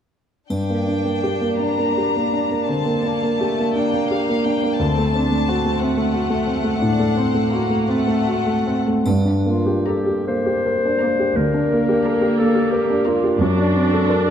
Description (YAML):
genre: classical, romantic movement for piano and orchestra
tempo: 56 BPM (dotted quarters)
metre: 12/8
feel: uneven beats, rubato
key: G minor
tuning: A4 = 440 Hz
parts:
  - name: warm baby grand piano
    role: melody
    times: 0.5-14.3 s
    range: D2 to Bb4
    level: -18 LUFS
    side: equal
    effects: none
  - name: clear studio violin section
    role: second line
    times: 0.5-14.3 s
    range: A3 to C6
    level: -25 LUFS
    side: left 4 dB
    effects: none
  - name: triangle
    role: percussion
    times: 0.5-1.9, 9.1-10.6 s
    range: none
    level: -46 LUFS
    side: left 1 dB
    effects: none
  - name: rich studio cello section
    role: bass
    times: 9.0-14.2 s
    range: D2 to G2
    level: -26 LUFS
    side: right 4 dB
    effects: none
  - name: bright clarinet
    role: second line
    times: 9.4-14.3 s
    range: F4 to C5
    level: -22 LUFS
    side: left 2 dB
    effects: none
  - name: rich studio viola section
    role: accompaniment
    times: 11.4-14.3 s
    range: Bb3 to D4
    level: -23 LUFS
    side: right 1 dB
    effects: none
room: moderate concert hall reverb, RT60 2.4 s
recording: dark, warm production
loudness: -17 LUFS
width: side -8 dB against mid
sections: 0.5-9.1 A section; 9.1-14.3 B section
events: none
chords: 0.5 Gm; 4.8 D7; 9.1 Gm; 13.4 D7/F#